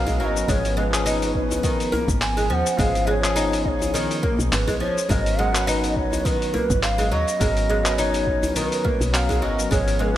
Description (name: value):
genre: organic downtempo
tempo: 104 BPM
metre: 4/4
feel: swing 55% on 16ths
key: G# dorian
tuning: A4 = 440 Hz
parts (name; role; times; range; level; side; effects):
- breathy mellow ney; melody; 0.0-10.2 s; B4 to G#5; -26 LUFS; right 1 dB; digital delay, shimmer reverb
- bell-like tine electric piano; accompaniment; 0.0-10.2 s; E#3 to B4; -28 LUFS; left 2 dB; medium stereo tremolo, sidechain pumping, digital delay, shimmer reverb
- woody FM bass; bass; 0.0-10.2 s; G#1 to D#2; -25 LUFS; equal; none
- wind-like tuned noise texture; texture; 0.0-10.2 s; B3 to C#5; -37 LUFS; right 2 dB; none
- oud; arpeggios; 0.1-10.1 s; D#3 to D#4; -26 LUFS; equal; digital delay, shimmer reverb
- dusty soul sampler-style drum kit; drums; 0.1-10.0 s; handclaps, hi-hat, shaker; -28 LUFS; left 1 dB; none
- electronic kick drum; drums; 0.1-9.8 s; none; -26 LUFS; equal; none
- djembe; percussion; 0.1-10.1 s; none; -33 LUFS; left 1 dB; none
- ethereal airy pad; sustained chords; 10.1-10.2 s; G#3; -37 LUFS; left 4 dB; none
room: moderate lush hall reverb, RT60 2.5 s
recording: bright 1980s-style digital production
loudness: -19 LUFS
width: side -12 dB against mid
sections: 0.0-10.2 A section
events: none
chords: 0.5 C#7/G#; 5.1 G#m11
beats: | 0.48 1.06 1.64 2.21 | 2.79 3.37 3.95 4.52 | 5.10 5.68 6.25 6.83 | 7.41 7.98 8.56 9.14 | 9.71